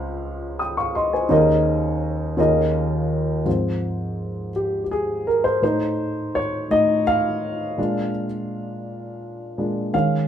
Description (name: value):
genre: gospel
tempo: 56 BPM (dotted quarters)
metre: 6/8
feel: straight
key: Ab major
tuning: A4 = 440 Hz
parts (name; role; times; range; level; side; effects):
- dark upright piano; solo; 0.0-10.3 s; Db2 to Eb6; -20 LUFS; equal; none
room: wet small room reverb, RT60 0.6 s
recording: band playing live in one room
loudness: -19 LUFS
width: side -9 dB against mid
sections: 0.0-3.5 A section; 3.5-10.3 B section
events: upright piano solo 3.5-10.3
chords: 0.0 Dbmaj7; 1.3 Eb7sus4; 2.4 Eb9sus4; 3.5 Ab6; 5.6 F7/A; 7.8 Bb7